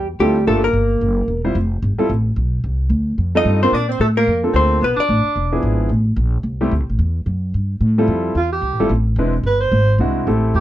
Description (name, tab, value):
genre	jazz, small-group swing and bop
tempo	220 BPM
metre	4/4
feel	swing 58% on 8ths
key	unclear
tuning	A4 = 438 Hz
part	vintage hollow-body jazz guitar	melody	0.0-5.8 s	G4 to Eb5	-19 LUFS	left 3 dB	none
part	warm alto saxophone	second line	0.0-5.7, 8.4-10.6 s	G3 to C5	-21 LUFS	right 4 dB	none
part	upright bass	bass	0.0-10.6 s	E1 to Bb2	-18 LUFS	equal	none
part	clear grand piano	accompaniment	0.2-10.6 s	F3 to B#4	-19 LUFS	equal	none
room	light reverb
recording	dark, warm production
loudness	-15 LUFS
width	side -13 dB against mid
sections	0.0-8.1 A section; 8.1-10.6 B section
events	alto saxophone solo 8.1-10.6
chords	0.5 Gm7; 1.0 F#7#11; 1.6 Fadd9; 2.6 Csus2; 3.2 F9; 3.7 Bbmaj7; 4.8 Asus24; 5.4 E7b9; 5.9 Am7; 7.0 Esus2; 7.5 C6; 8.1 Fmaj9; 9.2 E7b13